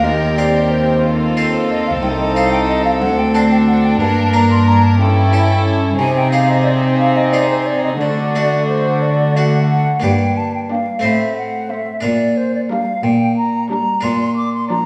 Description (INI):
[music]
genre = classical, baroque-style concerto movement with solo episodes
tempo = 60 BPM (dotted quarters)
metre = 6/8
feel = straight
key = G minor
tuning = A4 = 440 Hz
[part]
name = rich chamber violin section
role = melody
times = 0.0-14.9 s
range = F#4 to D5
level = -27 LUFS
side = equal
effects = none
[part]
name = silver concert flute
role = melody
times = 0.0-14.9 s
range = C5 to D6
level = -21 LUFS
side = equal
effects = none
[part]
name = warm chamber violin section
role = second line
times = 0.0-14.9 s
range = C4 to G4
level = -26 LUFS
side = equal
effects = none
[part]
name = dark chamber viola section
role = accompaniment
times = 0.0-14.9 s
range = F3 to C#4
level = -26 LUFS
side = equal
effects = none
[part]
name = harpsichord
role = accompaniment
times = 0.0-14.9 s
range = C2 to C5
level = -23 LUFS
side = equal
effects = none
[part]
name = warm chamber cello section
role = bass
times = 0.0-14.8 s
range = C2 to D3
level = -19 LUFS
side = equal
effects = none
[sound]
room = wet stone room reverb, RT60 1.5 s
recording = heard from further back in the room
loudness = -15 LUFS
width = mono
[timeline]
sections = 0.0-10.0 A section; 10.0-14.9 A section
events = none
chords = 0.0 Cm7/Eb; 1.0 F7/Eb; 2.0 Adim/C; 3.0 D5; 4.0 Gm; 5.0 A7/G; 6.0 Ab/C; 8.0 D; 10.0 Gm; 11.0 Am6; 12.0 Gm/Bb; 14.0 Bb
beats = | 0.04 1.04 | 2.03 3.01 | 4.00 4.99 | 5.99 6.99 | 8.01 9.02 | 10.04 11.04 | 12.04 13.04 | 14.03